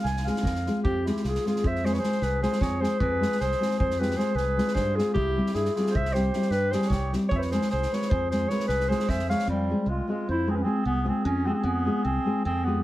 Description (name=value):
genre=balkan folk, Balkan wedding band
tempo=305 BPM (eighths)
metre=11/8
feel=straight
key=F hungarian minor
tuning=A4 = 442 Hz
part: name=mellow accordion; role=second line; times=0.0-12.8 s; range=C4 to Ab5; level=-34 LUFS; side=right 3 dB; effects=none
part: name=modern bright fingered electric bass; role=bass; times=0.0-12.8 s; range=C2 to G2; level=-29 LUFS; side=equal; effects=none
part: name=unplugged drum kit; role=percussion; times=0.1-9.4 s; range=kick drum, snare drum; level=-33 LUFS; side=equal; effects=none
part: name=nylon-string guitar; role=accompaniment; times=0.3-12.8 s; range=G3 to Ab4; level=-29 LUFS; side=left 1 dB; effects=none
part: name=warm clarinet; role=melody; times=0.8-12.8 s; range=G3 to F5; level=-28 LUFS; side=left 1 dB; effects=none
room=moderate plate reverb, RT60 1.3 s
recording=heard from further back in the room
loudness=-23 LUFS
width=side -15 dB against mid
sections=0.8-9.5 A section; 9.5-12.8 A section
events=none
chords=0.0 Fm; 5.2 C; 7.3 Fm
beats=0.06 0.26 0.46 0.65 | 0.85 1.05 1.24 1.44 1.63 1.83 2.03 2.22 2.42 2.62 2.81 | 3.01 3.20 3.40 3.60 3.79 3.99 4.18 4.38 4.58 4.77 4.97 | 5.17 5.36 5.56 5.76 5.95 6.15 6.34 6.54 6.74 6.93 7.13 | 7.33 7.52 7.72 7.92 8.11 8.31 8.51 8.70 8.90 9.10 9.29 | 9.49 9.69 9.88 10.08 10.28 10.47 10.67 10.87 11.06 11.26 11.46 | 11.65 11.85 12.05 12.24 12.44 12.64 12.84